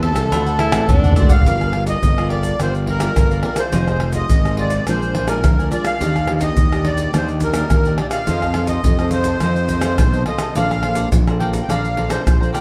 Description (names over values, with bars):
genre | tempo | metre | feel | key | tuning
samba and choro | 105 BPM | 4/4 | straight | G minor | A4 = 438 Hz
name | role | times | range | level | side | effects
accordion | melody | 0.0-12.6 s | A4 to G5 | -25 LUFS | equal | light tremolo tuning
cavaquinho | accompaniment | 0.0-12.6 s | D4 to Bb5 | -32 LUFS | equal | none
nylon-string guitar | accompaniment | 0.0-12.6 s | Bb2 to C5 | -28 LUFS | equal | none
fuzz fingered electric bass | bass | 0.0-12.5 s | F1 to F2 | -23 LUFS | equal | overdrive
agogo bells, pandeiro, tube shaker, surdo and tamborim | percussion | 0.0-12.6 s | none | -21 LUFS | equal | none
breathy tenor saxophone | second line | 0.6-1.4 s | D4 to E4 | -24 LUFS | equal | none
room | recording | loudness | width
light reverb | dark, warm production | -17 LUFS | mono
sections
0.0-1.5 A section; 1.5-12.6 B section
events
drum fill 0.7-1.5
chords
0.3 D7; 1.5 Gm7; 3.7 Fm7; 4.9 Bb7; 6.0 Ebmaj7; 8.3 F7; 10.6 Bbmaj9